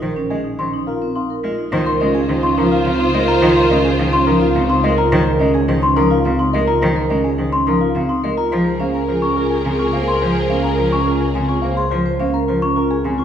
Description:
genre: classical, minimalist pattern music.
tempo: 106 BPM.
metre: 3/4.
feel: straight.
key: Db major.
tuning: A4 = 440 Hz.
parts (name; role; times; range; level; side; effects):
dark baby grand piano; melody; 0.0-13.2 s; Bb4 to Ab5; -24 LUFS; left 6 dB; none.
rich cello; accompaniment; 0.0-13.2 s; Db3 to Bb3; -23 LUFS; equal; none.
vibraphone with medium mallets; arpeggios; 0.0-13.2 s; C4 to C5; -19 LUFS; right 3 dB; none.
warm double bass; bass; 0.0-13.2 s; Bb1 to Db2; -22 LUFS; equal; none.
small celesta; arpeggios; 0.3-13.2 s; F5 to Db6; -23 LUFS; left 4 dB; none.
mellow French horn; second line; 1.7-4.9, 8.5-11.7 s; F4 to Ab4; -23 LUFS; right 2 dB; none.
rich studio string section; sustained chords; 1.7-4.9, 8.5-11.7 s; F4 to C5; -24 LUFS; left 1 dB; none.
room: wet recital hall reverb, RT60 1.3 s.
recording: heard from further back in the room.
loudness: -14 LUFS.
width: side -9 dB against mid.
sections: 0.0-1.7 A section; 1.7-13.2 B section.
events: none.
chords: 0.0 Bbm9; 1.7 Dbmaj9; 8.5 Bbm7/Db.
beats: | 0.03 0.59 1.16 | 1.72 2.29 2.86 | 3.42 3.99 4.55 | 5.12 5.69 6.25 | 6.82 7.38 7.95 | 8.52 9.08 9.65 | 10.21 10.78 11.35 | 11.91 12.48 13.04.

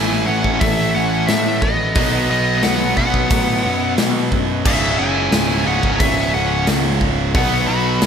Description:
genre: hard rock.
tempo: 89 BPM.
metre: 4/4.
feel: straight.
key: unclear.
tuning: A4 = 440 Hz.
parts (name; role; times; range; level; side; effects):
biting lead guitar; melody; 0.0-8.1 s; C#5 to B5; -21 LUFS; left 3 dB; overdrive, slapback echo.
smooth overdriven lead guitar; second line; 0.0-8.1 s; A3 to F#4; -26 LUFS; right 3 dB; slapback echo.
distorted electric guitar; riff; 0.0-8.1 s; C#2 to B3; -22 LUFS; right 10 dB; overdrive, slapback echo.
overdriven electric guitar; riff; 0.0-8.1 s; C#2 to B3; -24 LUFS; left 10 dB; slapback echo.
fuzz picked electric bass; bass; 0.0-8.1 s; C#1 to B2; -22 LUFS; equal; overdrive.
big rock drum kit; drums; 0.4-8.1 s; crash cymbal, hi-hat, kick drum, snare drum; -20 LUFS; left 1 dB; none.
room: moderate concert hall reverb, RT60 2.0 s.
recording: big arena sound.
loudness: -14 LUFS.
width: side -7 dB against mid.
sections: 0.0-8.1 A section.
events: none.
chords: 0.0 A; 2.0 B5; 4.7 C#m; 7.3 B5.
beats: 0.62 1.29 | 1.96 2.64 3.31 3.98 | 4.66 5.33 6.00 6.67 | 7.35 8.02.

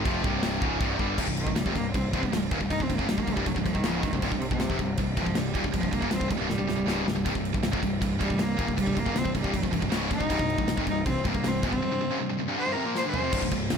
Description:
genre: heavy metal.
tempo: 158 BPM.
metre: 4/4.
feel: straight.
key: C minor.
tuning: A4 = 440 Hz.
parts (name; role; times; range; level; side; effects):
heavy high-gain guitar; riff; 0.0-13.8 s; C2 to Bb3; -31 LUFS; right 14 dB; distortion.
high-gain distorted guitar; riff; 0.0-13.8 s; C2 to Bb3; -31 LUFS; left 13 dB; distortion.
fuzz picked electric bass; bass; 0.0-13.8 s; C1 to G1; -33 LUFS; equal; overdrive.
modern studio drum kit; drums; 0.1-13.8 s; crash cymbal, kick drum, snare drum, toms; -30 LUFS; equal; none.
rich cello; melody; 1.4-13.3 s; Bb2 to C5; -31 LUFS; left 1 dB; none.
room: light reverb.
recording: none.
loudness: -24 LUFS.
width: side -7 dB against mid.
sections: 0.0-1.2 A section; 1.2-13.3 B section.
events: half time 0.0-1.2; drum fill 1.0, 6.5-7.3, 13.0-13.3; cello solo 1.2-13.3.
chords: 0.1 C5.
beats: 0.06 0.43 0.81 | 1.19 1.57 1.95 2.33 | 2.70 3.08 3.46 3.84 | 4.22 4.60 4.98 5.36 | 5.74 6.12 6.50 6.88 | 7.25 7.63 8.02 8.39 | 8.77 9.15 9.53 9.91 | 10.29 10.68 11.05 11.44 | 11.81 12.20 12.57 12.96 | 13.34 13.71.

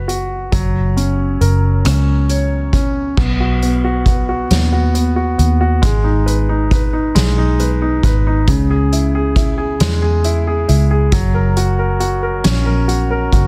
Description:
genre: six-eight pop ballad.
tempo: 45 BPM (dotted quarters).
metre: 6/8.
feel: straight.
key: B major.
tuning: A4 = 440 Hz.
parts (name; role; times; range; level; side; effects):
clear baby grand piano; accompaniment; 0.0-13.5 s; C#3 to C#5; -20 LUFS; equal; none.
vintage muted fingered electric bass; bass; 0.0-13.5 s; F#1 to E2; -18 LUFS; equal; none.
soft-mallet drum kit; drums; 0.1-13.5 s; crash cymbal, hi-hat, kick drum, rim click, snare drum; -20 LUFS; equal; none.
room: small room ambience.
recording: dense, heavily limited modern master.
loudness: -15 LUFS.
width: mono.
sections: 0.0-3.2 A section; 3.2-13.5 B section.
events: none.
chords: 0.0 B5; 0.5 F#; 3.2 B; 5.8 G#m; 8.5 C#m; 11.1 F#.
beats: | 0.53 1.85 | 3.18 4.50 | 5.83 7.15 | 8.47 9.80 | 11.12 12.45.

